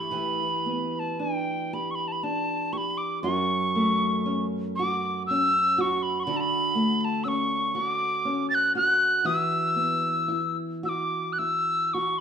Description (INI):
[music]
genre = celtic folk, Celtic slow air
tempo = 40 BPM (dotted quarters)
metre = 6/8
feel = uneven beats, rubato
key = E dorian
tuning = A4 = 441 Hz
[part]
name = mellow wooden whistle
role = melody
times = 0.0-12.2 s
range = G5 to A6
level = -25 LUFS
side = equal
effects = none
[part]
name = nylon-string guitar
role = accompaniment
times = 0.0-12.2 s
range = F#2 to G4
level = -29 LUFS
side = equal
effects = none
[sound]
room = moderate recital hall reverb, RT60 1.4 s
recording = minimal, uncompressed stereo recording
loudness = -23 LUFS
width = side -7 dB against mid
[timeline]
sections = 0.1-12.2 A section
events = none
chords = 0.1 Em7; 3.2 F#m; 6.3 Dmaj7; 9.2 Esus2